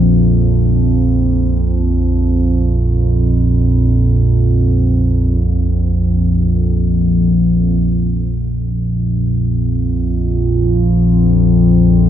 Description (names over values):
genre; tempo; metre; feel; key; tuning
ambient; free time; none; none; unclear; A4 = 437 Hz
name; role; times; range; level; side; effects
analog drone; solo; 0.0-12.1 s; Bb1 to F2; -11 LUFS; equal; chorus, diffuse ambient delay
room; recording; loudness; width
wet cathedral reverb, RT60 5.9 s; dreamy mix soaked in reverb, cassette tape; -12 LUFS; side -10 dB against mid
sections
0.0-7.8 A section; 7.8-12.1 B section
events
none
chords
0.0 Bb5